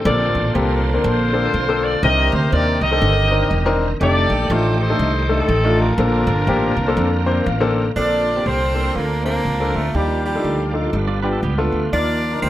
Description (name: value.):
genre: uptempo gospel.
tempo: 121 BPM.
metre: 4/4.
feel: swing 59% on 8ths.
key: Bb major.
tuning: A4 = 443 Hz.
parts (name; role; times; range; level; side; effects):
warm horn section; melody; 0.0-12.5 s; Bb3 to Eb5; -21 LUFS; left 1 dB; none.
warm grand piano; accompaniment; 0.0-12.5 s; G2 to F5; -21 LUFS; left 2 dB; none.
bright tonewheel organ; sustained chords; 0.0-12.5 s; Db3 to D5; -27 LUFS; right 3 dB; slow rotary speaker, chorus vibrato.
upright bass; bass; 0.1-12.5 s; E1 to F2; -20 LUFS; right 1 dB; none.
bright tenor saxophone; melody; 8.0-12.5 s; G3 to D4; -24 LUFS; right 4 dB; none.
clean electric guitar; second line; 11.1-11.9 s; A3 to D5; -27 LUFS; right 7 dB; none.
room: light reverb, small room ambience.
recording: none.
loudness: -16 LUFS.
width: side -13 dB against mid.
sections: 0.0-8.0 A section; 8.0-12.5 B section.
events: grand piano fill 7.2-8.0.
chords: 0.1 Bbmaj9; 2.0 Cm9; 4.0 F13; 6.0 Bbmaj9; 9.9 Ebmaj9; 10.9 G7; 11.9 Cm11/Eb.